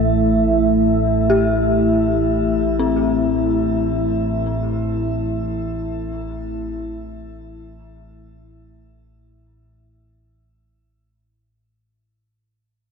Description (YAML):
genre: dark ambient drone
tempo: free time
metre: none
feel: none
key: A minor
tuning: A4 = 440 Hz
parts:
  - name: dark analog pad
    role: sustained chords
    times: 0.0-11.4 s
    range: A3 to E5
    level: -19 LUFS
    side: equal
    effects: chorus, shimmer reverb
  - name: dark detuned synth bell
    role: arpeggios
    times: 0.0-11.5 s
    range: C4 to A4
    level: -24 LUFS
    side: left 4 dB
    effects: chorus, tape echo, shimmer reverb
  - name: deep rumbling drone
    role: drone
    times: 0.0-11.6 s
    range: A1 to A2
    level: -24 LUFS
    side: equal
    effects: built-in reverb
room: wet cathedral reverb, RT60 6.5 s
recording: dark, warm production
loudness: -17 LUFS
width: side -5 dB against mid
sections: 0.0-11.4 A section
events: fade-out 0.0-11.4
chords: 0.0 A5